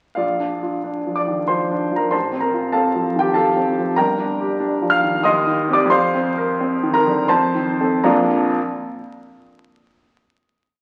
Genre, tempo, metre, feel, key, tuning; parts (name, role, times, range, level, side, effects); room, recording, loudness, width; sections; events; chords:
classical, romantic character piece for solo piano; 77-98 BPM; 3/4; rubato; Bb major; A4 = 440 Hz
clear baby grand piano; solo; 0.1-8.6 s; G1 to F6; -19 LUFS; equal
wet recital hall reverb, RT60 1.7 s; very old 78 rpm record, vinyl crackle; -19 LUFS; mono
0.2-8.0 A section; 8.0-10.2 final chord
slowing down 3.1-8.0
0.2 Bb; 2.1 F/A; 4.0 Gm7; 5.3 Cm/Eb; 5.9 F7sus4; 7.3 F7; 8.0 Bb